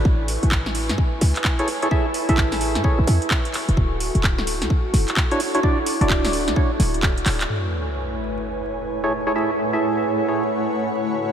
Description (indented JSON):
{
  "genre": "UK garage, two-step garage",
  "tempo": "129 BPM",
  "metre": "4/4",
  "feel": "swing 63% on 16ths",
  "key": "A major",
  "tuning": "A4 = 439 Hz",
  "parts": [
    { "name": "airy breathy pad", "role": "sustained chords", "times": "0.0-11.3 s", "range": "D3 to C#6", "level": "-28 LUFS", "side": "equal", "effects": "chorus, sidechain pumping" },
    { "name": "short 808-style bass", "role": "bass", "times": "0.0-7.5 s", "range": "D1 to A2", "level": "-21 LUFS", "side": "equal", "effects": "none" },
    { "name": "electronic kick drum", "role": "drums", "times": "0.1-7.1 s", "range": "none", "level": "-21 LUFS", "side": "equal", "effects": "none" },
    { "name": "house drum kit", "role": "drums", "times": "0.3-7.5 s", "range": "handclaps, hi-hat, snare drum", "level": "-26 LUFS", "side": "equal", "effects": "none" },
    { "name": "percussive organ stab", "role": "stabs", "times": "1.6-10.4 s", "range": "D4 to E5", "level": "-24 LUFS", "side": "right 1 dB", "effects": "chorus, diffuse ambient delay" },
    { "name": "sub drop", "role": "sound effects", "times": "7.5-9.4 s", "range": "none", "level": "-30 LUFS", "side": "equal", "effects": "none" },
    { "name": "granular cloud pad", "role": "texture", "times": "8.9-11.3 s", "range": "A3 to B5", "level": "-27 LUFS", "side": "left 1 dB", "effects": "built-in reverb, sidechain pumping" }
  ],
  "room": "wet cathedral reverb, RT60 5.7 s",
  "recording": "dreamy mix soaked in reverb, vinyl crackle",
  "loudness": "-18 LUFS",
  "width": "side -9 dB against mid",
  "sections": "0.0-7.5 A section; 7.5-11.3 B section",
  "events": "drum fill 7.3; impact 7.5-9.4",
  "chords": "0.1 Amaj7; 3.5 Dmaj9; 7.5 Amaj7"
}